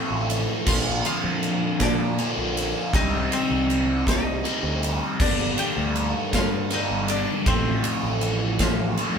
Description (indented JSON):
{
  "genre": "quiet-loud alternative rock",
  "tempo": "53 BPM (dotted quarters)",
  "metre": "6/8",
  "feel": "straight",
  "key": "G minor",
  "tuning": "A4 = 443 Hz",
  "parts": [
    { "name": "koto", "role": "melody", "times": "0.0-9.2 s", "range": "A3 to G5", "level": "-31 LUFS", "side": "left 2 dB", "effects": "none" },
    { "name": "crunchy overdriven guitar", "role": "riff", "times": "0.0-9.2 s", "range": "G2 to F4", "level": "-25 LUFS", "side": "equal", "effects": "phaser" },
    { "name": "fuzz picked electric bass", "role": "bass", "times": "0.1-9.2 s", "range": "G1 to Bb2", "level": "-28 LUFS", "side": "equal", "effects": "overdrive" },
    { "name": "big rock drum kit", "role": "drums", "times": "0.3-9.2 s", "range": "crash cymbal, kick drum, ride cymbal, snare drum", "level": "-26 LUFS", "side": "equal", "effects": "none" }
  ],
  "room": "moderate stone room reverb, RT60 1.0 s",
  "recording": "band playing live in one room",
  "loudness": "-21 LUFS",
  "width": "side -6 dB against mid",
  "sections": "0.0-9.2 A section",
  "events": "none",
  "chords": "0.0 F/A; 0.7 Bb; 2.9 Cm; 5.2 Gm; 7.5 F/A",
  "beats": "| 0.66 1.80 | 2.94 4.07 | 5.21 6.34 | 7.47 8.61"
}